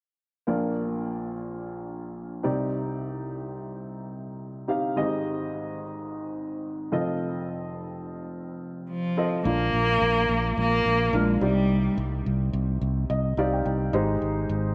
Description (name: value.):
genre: piano-driven pop.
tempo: 107 BPM.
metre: 4/4.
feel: swing 56% on 16ths.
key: unclear.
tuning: A4 = 440 Hz.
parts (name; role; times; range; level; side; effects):
warm upright piano; accompaniment; 0.5-14.7 s; F1 to G5; -31 LUFS; equal; none.
warm cello; melody; 8.9-12.2 s; F3 to Bb3; -27 LUFS; equal; slapback echo.
fingered electric bass; bass; 9.5-14.7 s; Ab1 to C2; -29 LUFS; equal; none.
room: moderate plate reverb, RT60 3.4 s.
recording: none.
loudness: -27 LUFS.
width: mono.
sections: 0.5-9.5 A section; 9.5-14.7 B section.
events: upright piano fill 12.8-13.9.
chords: 0.5 Bb; 2.4 Cmadd9; 5.0 Abmaj7; 6.9 F7; 9.5 Bb; 11.4 Cmadd9; 13.9 Abmaj7.